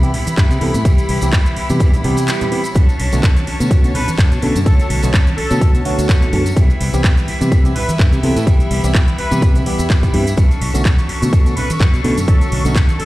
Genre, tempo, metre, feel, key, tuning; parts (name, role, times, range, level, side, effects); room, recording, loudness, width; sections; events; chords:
filtered disco house; 126 BPM; 4/4; swing 55% on 16ths; B minor; A4 = 441 Hz
tine electric piano; accompaniment; 0.0-12.7 s; D3 to C#5; -21 LUFS; equal; phaser, vintage 12-bit sampler grit, sidechain pumping
clear chamber violin section; sustained chords; 0.0-13.1 s; E4 to C#6; -28 LUFS; left 1 dB; vintage 12-bit sampler grit, sidechain pumping
electric guitar with an envelope filter; riff; 0.0-13.1 s; F#3 to A4; -26 LUFS; equal; sidechain pumping
modern bright fingered electric bass; bass; 0.0-13.0 s; B1 to C3; -19 LUFS; equal; sidechain pumping
house drum kit; drums; 0.0-13.1 s; handclaps, hi-hat, shaker; -25 LUFS; equal; sidechain pumping on hats, sidechain pumping on perc
tambourine and congas; percussion; 0.0-13.0 s; -26 LUFS; right 1 dB; sidechain pumping on perc
electronic kick drum; drums; 0.4-12.9 s; -12 LUFS; equal
warm trumpet section; melody; 3.9-13.1 s; A4 to B4; -26 LUFS; left 1 dB; sidechain pumping, tape echo
digital ambience; played on a big sound system in a bare room, stone room reverb; -12 LUFS; side -17 dB against mid
0.0-13.1 A section
break 2.3-2.8
0.0 Cmaj7; 2.8 Bm9; 6.6 Cmaj7; 10.4 Bm9